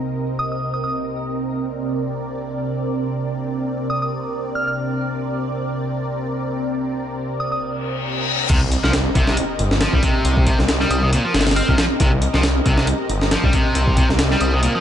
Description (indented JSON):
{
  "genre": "breakbeat, breaks",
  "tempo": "137 BPM",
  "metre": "4/4",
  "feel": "swing 55% on 16ths",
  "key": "C minor",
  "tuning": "A4 = 440 Hz",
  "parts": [
    { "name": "lush unison pad", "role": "sustained chords", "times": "0.0-14.8 s", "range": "C3 to Eb5", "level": "-24 LUFS", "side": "right 1 dB", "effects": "chorus, phaser, sidechain pumping" },
    { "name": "soft synth bell", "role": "melody", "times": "0.4-0.9, 3.9-4.7, 7.4-7.6, 10.9-11.7, 14.4-14.8 s", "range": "Eb6 to F6", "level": "-27 LUFS", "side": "equal", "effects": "chorus, small speaker sound, tape echo" },
    { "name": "reverse cymbal and sub drop", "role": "sound effects", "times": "7.8-10.2 s", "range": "none", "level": "-25 LUFS", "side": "left 3 dB", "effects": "none" },
    { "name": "distorted electric guitar", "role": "riff", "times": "8.5-14.8 s", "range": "Bb2 to C4", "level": "-22 LUFS", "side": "equal", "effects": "overdrive, tube saturation, tape echo" },
    { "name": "detuned saw bass", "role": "bass", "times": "8.5-14.7 s", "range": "G1 to C2", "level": "-20 LUFS", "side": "equal", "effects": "none" },
    { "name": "breakbeat sampler-style drum kit", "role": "drums", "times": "8.5-14.7 s", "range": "crash cymbal, hi-hat, kick drum, snare drum", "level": "-18 LUFS", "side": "equal", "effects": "none" }
  ],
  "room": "light reverb",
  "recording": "nothing above 10.9 kHz",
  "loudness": "-17 LUFS",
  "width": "side -10 dB against mid",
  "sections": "0.0-8.5 A section; 8.5-14.8 B section",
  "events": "filter sweep on analog synth pad 0.0-8.5; reverse cymbal 7.8-8.5; drop 8.5-14.8; impact 8.5-10.2",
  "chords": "0.0 Cm7"
}